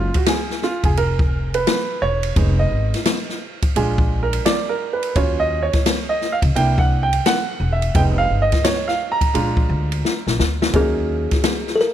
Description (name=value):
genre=hip hop, jazz-hop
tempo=86 BPM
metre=4/4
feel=swing 64% on 16ths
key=Eb minor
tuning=A4 = 440 Hz
part: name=warm upright piano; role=accompaniment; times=0.0-11.8 s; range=F3 to Bb5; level=-21 LUFS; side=right 4 dB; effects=none
part: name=upright bass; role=bass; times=0.0-11.2 s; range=Fb1 to Eb2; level=-21 LUFS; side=equal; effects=none
part: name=open jazz drum kit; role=drums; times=0.1-11.9 s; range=hi-hat, kick drum, ride cymbal, snare drum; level=-20 LUFS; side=left 1 dB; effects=none
part: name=kalimba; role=melody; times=10.8-11.9 s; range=Ab4 to Bb4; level=-20 LUFS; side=left 3 dB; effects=none
room=light reverb, small room ambience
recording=none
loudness=-16 LUFS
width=side -11 dB against mid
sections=0.0-10.7 A section; 10.7-11.9 B section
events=upright piano solo 0.0-10.7; drum fill 10.0-10.7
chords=0.0 Gbmaj9 (rootless); 2.4 Fm7b5; 3.8 Bb7; 5.2 Ebm7; 6.6 C7; 7.9 Fm7b5; 9.3 Bb7; 10.7 Ebm7